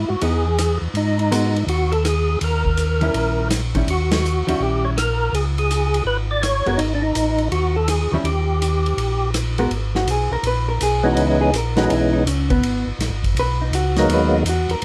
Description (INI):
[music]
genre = soul jazz organ trio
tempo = 164 BPM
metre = 4/4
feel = swing 65% on 8ths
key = G# minor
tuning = A4 = 440 Hz
[part]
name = percussive tonewheel organ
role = melody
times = 0.0-14.4 s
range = E3 to D5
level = -23 LUFS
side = equal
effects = overdrive, chorus vibrato, slow rotary speaker
[part]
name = mellow tonewheel organ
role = bass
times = 0.0-14.8 s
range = F#1 to G#2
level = -24 LUFS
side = equal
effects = chorus vibrato, slow rotary speaker
[part]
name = hollow-body jazz guitar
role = accompaniment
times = 0.2-14.8 s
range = D#3 to B4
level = -25 LUFS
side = equal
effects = none
[part]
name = vintage drum kit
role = drums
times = 0.2-14.8 s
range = hi-hat, kick drum, ride cymbal, rim click, snare drum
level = -29 LUFS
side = equal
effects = none
[sound]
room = light reverb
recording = none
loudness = -20 LUFS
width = mono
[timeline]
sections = 0.0-9.7 A section; 9.7-14.8 B section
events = band accent 4.1; hollow-body jazz guitar solo 9.7-14.8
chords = 0.0 C#m9 (rootless); 1.0 G#m9; 2.4 D#7b9; 5.3 C#5; 6.8 G#5; 8.3 D#; 9.7 G#madd9; 11.2 C#m9; 12.6 G#m9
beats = 0.22 0.59 | 0.95 1.32 1.68 2.05 | 2.41 2.78 3.14 3.51 | 3.87 4.24 4.60 4.97 | 5.33 5.70 6.06 6.43 | 6.79 7.16 7.52 7.89 | 8.25 8.62 8.98 9.35 | 9.71 10.08 10.44 10.81 | 11.17 11.54 11.90 12.27 | 12.63 13.00 13.36 13.73 | 14.09 14.46 14.82